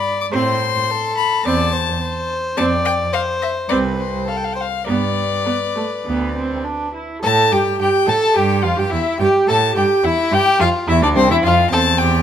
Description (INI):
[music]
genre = quick classical-period movement for string quartet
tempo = 106 BPM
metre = 4/4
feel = straight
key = unclear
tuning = A4 = 440 Hz
[part]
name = rich violin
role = melody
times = 0.0-12.2 s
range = C5 to D6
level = -20 LUFS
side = left 8 dB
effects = none
[part]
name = warm violin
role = second line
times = 0.0-12.2 s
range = C4 to D5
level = -22 LUFS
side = left 2 dB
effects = none
[part]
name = rich viola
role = accompaniment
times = 0.3-12.2 s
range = A3 to A4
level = -19 LUFS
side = right 3 dB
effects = none
[part]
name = warm cello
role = bass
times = 0.3-12.2 s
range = C2 to A2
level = -22 LUFS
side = right 4 dB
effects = none
[sound]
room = moderate recital hall reverb, RT60 1.6 s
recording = close, detailed microphones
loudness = -15 LUFS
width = side -9 dB against mid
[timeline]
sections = 0.0-7.2 A section; 7.2-12.2 B section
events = none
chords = 0.3 Am; 2.6 F5; 4.9 G; 7.2 Emadd11; 10.6 F5; 11.7 C/E